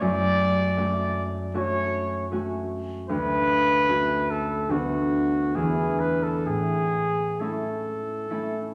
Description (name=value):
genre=classical, romantic duo for trumpet and harp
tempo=64-79 BPM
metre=4/4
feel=rubato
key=A major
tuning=A4 = 438 Hz
part: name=clear trumpet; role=melody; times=0.0-8.7 s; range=F#4 to D5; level=-28 LUFS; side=equal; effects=none
part: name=concert harp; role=accompaniment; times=0.0-8.7 s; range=D2 to F#4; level=-28 LUFS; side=equal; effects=none
room=wet recital hall reverb, RT60 1.6 s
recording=none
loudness=-25 LUFS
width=mono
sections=0.0-8.7 A section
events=none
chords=0.0 F#m; 3.1 Dmaj7; 4.7 Bm/D; 5.5 E7; 6.5 A